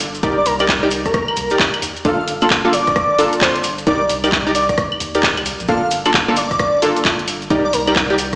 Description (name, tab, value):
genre	UK garage, two-step garage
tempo	132 BPM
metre	4/4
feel	swing 63% on 16ths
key	unclear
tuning	A4 = 441 Hz
part	punchy chord stab	stabs	0.0-8.2 s	Bb3 to D5	-18 LUFS	equal	chorus, dub echo
part	saturated sub bass	bass	0.0-8.4 s	G1 to Eb2	-30 LUFS	equal	none
part	garage drum kit	drums	0.0-8.4 s	claves, handclaps, hi-hat, rim click	-18 LUFS	equal	none
part	maracas	percussion	0.0-8.4 s	none	-32 LUFS	equal	none
part	electronic kick drum	drums	0.2-8.4 s	none	-23 LUFS	equal	none
part	airy dreamy lead	melody	0.4-8.4 s	Bb4 to F5	-20 LUFS	equal	chorus, dub echo
room	wet lush hall reverb, RT60 1.9 s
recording	played on a big sound system in a bare room, large studio reverb, small speaker sound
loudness	-14 LUFS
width	side -23 dB against mid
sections	0.0-8.4 A section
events	none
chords	0.2 Cm7; 2.0 Gm7; 3.9 Cm7; 5.7 Gm7; 7.5 Cm7